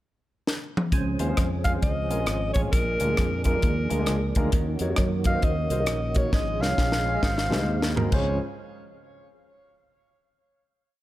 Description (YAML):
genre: uptempo gospel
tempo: 133 BPM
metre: 4/4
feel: swing 61% on 8ths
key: Db major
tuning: A4 = 440 Hz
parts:
  - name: crisp fusion drum kit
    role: drums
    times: 0.5-8.3 s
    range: crash cymbal, hi-hat, kick drum, rim click, snare drum, toms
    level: -26 LUFS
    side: equal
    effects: none
  - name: warm upright piano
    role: accompaniment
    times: 0.9-8.4 s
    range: Db2 to Eb5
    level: -31 LUFS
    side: left 1 dB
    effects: none
  - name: percussive tonewheel organ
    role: sustained chords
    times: 0.9-8.4 s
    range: Eb3 to Ab4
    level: -33 LUFS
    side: right 3 dB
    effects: fast rotary speaker, chorus vibrato
  - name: fingered electric bass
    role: bass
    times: 0.9-8.4 s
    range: Ab1 to Gb2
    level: -28 LUFS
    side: equal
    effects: none
  - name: warm alto saxophone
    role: melody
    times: 1.6-8.4 s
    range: Bb4 to F5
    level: -29 LUFS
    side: left 1 dB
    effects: tape echo
room: light reverb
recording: none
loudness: -22 LUFS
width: side -15 dB against mid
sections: 0.0-0.9 pickup bar; 0.9-8.1 verse; 8.1-9.9 final chord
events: drum fill 0.5-0.9, 6.3-8.1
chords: 0.0 N.C.; 0.9 Dbmaj7; 2.7 Bb7; 4.5 Ebm7; 6.3 Db/Ab; 7.2 Ab7; 8.1 Dbmaj7